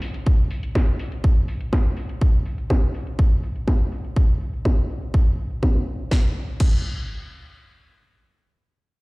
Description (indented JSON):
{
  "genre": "filtered disco house",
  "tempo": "123 BPM",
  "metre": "4/4",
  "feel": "straight",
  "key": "none",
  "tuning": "none",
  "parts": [
    { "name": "house drum kit", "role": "drums", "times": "0.0-6.8 s", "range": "crash cymbal, hi-hat, snare drum", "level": "-30 LUFS", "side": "equal", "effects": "sidechain pumping on hats, low-pass filter on hats, low-pass filter on snare, sidechain pumping on cymbals, low-pass filter on cymbals, low-pass filter on room" },
    { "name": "electronic kick drum", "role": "drums", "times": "0.3-6.8 s", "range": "none", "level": "-18 LUFS", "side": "equal", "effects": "none" }
  ],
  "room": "little or no reverb",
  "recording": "played on a big sound system in a bare room, large studio reverb",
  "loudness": "-19 LUFS",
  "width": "side -25 dB against mid",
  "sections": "0.0-6.1 A section; 6.1-9.0 B section",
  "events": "filter sweep on drum 0.0-6.1",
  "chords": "none"
}